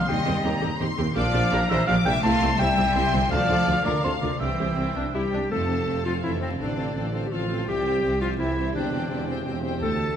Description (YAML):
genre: cinematic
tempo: 167 BPM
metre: 3/4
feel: straight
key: F major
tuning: A4 = 443 Hz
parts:
  - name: rich studio violin section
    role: melody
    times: 0.0-10.2 s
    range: C5 to E6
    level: -33 LUFS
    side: left 3 dB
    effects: none
  - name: dark cor anglais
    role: second line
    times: 0.0-5.1 s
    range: C5 to A5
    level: -26 LUFS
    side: equal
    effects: none
  - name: concert harp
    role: arpeggios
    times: 0.0-10.2 s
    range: F2 to F5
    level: -34 LUFS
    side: left 4 dB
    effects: none
  - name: rich studio violin section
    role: second line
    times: 0.1-9.8 s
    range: A4 to G5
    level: -33 LUFS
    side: left 4 dB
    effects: none
  - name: rich studio viola section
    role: accompaniment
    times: 0.1-9.8 s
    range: A3 to A4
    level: -32 LUFS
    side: right 1 dB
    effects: none
  - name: rich studio cello section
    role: bass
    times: 0.1-10.2 s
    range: C3 to A3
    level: -29 LUFS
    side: right 1 dB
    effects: none
  - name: rich studio double bass section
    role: bass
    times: 0.1-10.1 s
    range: A1 to F2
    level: -30 LUFS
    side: right 1 dB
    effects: none
  - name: warm tuba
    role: bass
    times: 0.1-10.1 s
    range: E1 to Eb2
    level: -32 LUFS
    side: right 3 dB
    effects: none
  - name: clear clarinet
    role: second line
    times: 5.1-10.2 s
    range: C4 to A4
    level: -28 LUFS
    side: equal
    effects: none
room: wet scoring stage reverb, RT60 1.5 s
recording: vinyl crackle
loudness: -22 LUFS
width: side -9 dB against mid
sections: 0.0-5.5 A section; 5.5-10.2 B section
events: none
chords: 0.1 Cm/Eb; 1.2 Gm7/Bb; 2.2 C; 3.3 Dm; 4.4 C; 5.5 F; 6.6 F/A; 7.7 C; 8.7 C/E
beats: | 0.08 0.44 0.80 | 1.16 1.51 1.87 | 2.23 2.59 2.95 | 3.31 3.67 4.03 | 4.40 4.77 5.14 | 5.51 5.87 6.23 | 6.59 6.96 7.31 | 7.67 8.03 8.39 | 8.75 9.10 9.46 | 9.81